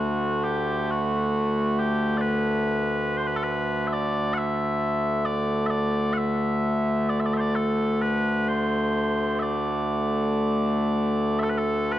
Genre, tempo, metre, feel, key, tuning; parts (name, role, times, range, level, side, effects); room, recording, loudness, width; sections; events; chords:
celtic folk; 58-70 BPM; 4/4; rubato; D mixolydian; A4 = 440 Hz
mellow small bagpipes; solo; 0.0-12.0 s; D2 to F#5; -22 LUFS; equal
moderate concert hall reverb, RT60 2.2 s; dark, warm production; -22 LUFS; side -13 dB against mid
0.0-11.4 A section